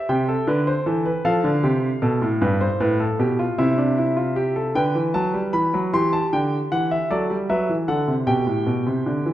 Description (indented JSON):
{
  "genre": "classical, baroque-style 3-part fugue for grand piano",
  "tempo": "51 BPM (dotted quarters)",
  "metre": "6/8",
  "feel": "straight",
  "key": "C major",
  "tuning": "A4 = 440 Hz",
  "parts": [
    { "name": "warm concert grand piano", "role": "solo", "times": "0.0-9.3 s", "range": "G2 to C6", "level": "-19 LUFS", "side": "equal", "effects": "none" }
  ],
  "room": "moderate concert hall reverb, RT60 2.2 s",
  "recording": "dark, warm production",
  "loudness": "-19 LUFS",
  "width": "side -13 dB against mid",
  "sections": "0.0-9.3 A section",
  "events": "none",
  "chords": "0.1 C; 1.2 F; 2.4 G7; 3.6 C; 4.8 G/D; 5.9 C; 7.1 D7/F#; 8.3 G"
}